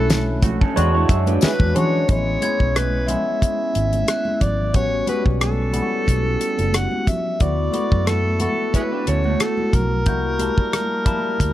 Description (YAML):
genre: lush 1970s-style soul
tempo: 90 BPM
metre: 4/4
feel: swing 54% on 16ths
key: A major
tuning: A4 = 439 Hz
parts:
  - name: overdriven harmonica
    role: melody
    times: 0.0-11.5 s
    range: E4 to F#5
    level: -24 LUFS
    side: equal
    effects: none
  - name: barky tine electric piano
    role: accompaniment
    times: 0.0-11.5 s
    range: G3 to A5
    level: -24 LUFS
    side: left 1 dB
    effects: overdrive, phaser
  - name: warm French horn section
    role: sustained chords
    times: 0.0-2.1 s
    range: D3 to C#5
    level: -33 LUFS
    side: left 1 dB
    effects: none
  - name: vintage muted fingered electric bass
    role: bass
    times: 0.0-11.5 s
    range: F#1 to E3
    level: -22 LUFS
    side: equal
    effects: none
  - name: glockenspiel with soft plastic mallets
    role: texture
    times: 0.0-5.0, 10.1-11.5 s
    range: F#6 to G#6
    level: -34 LUFS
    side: equal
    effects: none
  - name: damped 70s drum kit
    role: drums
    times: 0.1-11.5 s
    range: hi-hat, kick drum, rim click, snare drum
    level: -19 LUFS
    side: equal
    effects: none
  - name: congas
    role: percussion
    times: 0.1-11.5 s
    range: none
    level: -30 LUFS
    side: equal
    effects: none
  - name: tambourine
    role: percussion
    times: 0.1-1.6 s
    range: none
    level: -35 LUFS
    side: left 10 dB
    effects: none
  - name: electric guitar through a small old amp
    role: riff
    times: 0.4-2.1, 8.7-10.0 s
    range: A3 to E5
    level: -26 LUFS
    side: right 6 dB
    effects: spring reverb
room: small room ambience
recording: none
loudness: -17 LUFS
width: side -13 dB against mid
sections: 0.0-2.1 A section; 2.1-11.5 B section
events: none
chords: 0.0 Bm11; 0.8 E13; 2.1 Amaj9 (rootless); 4.7 A13; 7.4 D6; 10.1 C7#11